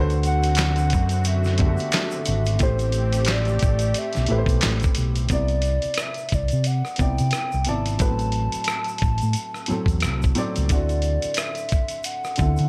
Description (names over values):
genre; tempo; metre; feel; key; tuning
R&B, neo-soul; 89 BPM; 4/4; swing 58% on 16ths; A dorian; A4 = 440 Hz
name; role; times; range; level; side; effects
dark upright piano; accompaniment; 0.0-12.7 s; A2 to D5; -32 LUFS; equal; none
warm analog pad; sustained chords; 0.0-5.3 s; D3 to G4; -35 LUFS; equal; chorus
fingered electric bass; bass; 0.0-12.7 s; G#1 to D3; -24 LUFS; equal; none
dusty soul sampler-style drum kit; drums; 0.1-12.7 s; handclaps, hi-hat, kick drum, rim click, snare drum; -27 LUFS; equal; none
tube shaker and finger snaps; percussion; 0.1-12.7 s; none; -40 LUFS; equal; none
hollow clarinet-like synth lead; melody; 0.3-12.7 s; C5 to A5; -31 LUFS; equal; chorus, plate reverb
room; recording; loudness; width
light reverb; none; -22 LUFS; mono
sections
0.0-5.3 A section; 5.3-12.7 B section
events
none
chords
0.0 D7; 2.6 Am7; 5.3 Cmaj9; 8.0 Am69; 10.7 D9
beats
0.58 1.25 1.93 | 2.60 3.28 3.95 4.63 | 5.30 5.97 6.65 7.32 | 8.00 8.67 9.35 10.02 | 10.69 11.37 12.04